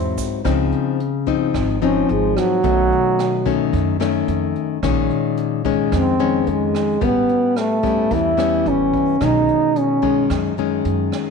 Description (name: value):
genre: bossa nova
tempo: 110 BPM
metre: 4/4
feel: straight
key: unclear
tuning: A4 = 439 Hz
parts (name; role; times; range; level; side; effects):
- breathy trombone; melody; 0.0-10.3 s; Gb3 to E4; -18 LUFS; right 3 dB; none
- nylon-string guitar; accompaniment; 0.0-11.3 s; F2 to E4; -19 LUFS; left 9 dB; none
- upright bass; bass; 0.0-11.1 s; Ab1 to Gb2; -24 LUFS; right 2 dB; none
- jazz brush drum kit; drums; 0.2-11.2 s; hi-hat, kick drum, rim click; -30 LUFS; right 6 dB; none
- tube shaker; percussion; 0.2-0.5 s; none; -36 LUFS; right 16 dB; none
room: light reverb, small room reverb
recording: 1960s-style stereo with parts hard left and right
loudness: -16 LUFS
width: side -5 dB against mid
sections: 0.5-11.3 A section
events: trombone solo 0.5-11.3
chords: 0.5 Dbmaj9; 2.6 Cb9; 4.8 Bbm11; 7.0 A9; 9.2 Cb69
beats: | 0.45 1.00 1.54 2.09 | 2.64 3.19 3.73 4.28 | 4.83 5.37 5.92 6.47 | 7.02 7.56 8.11 8.66 | 9.21 9.75 10.30 10.85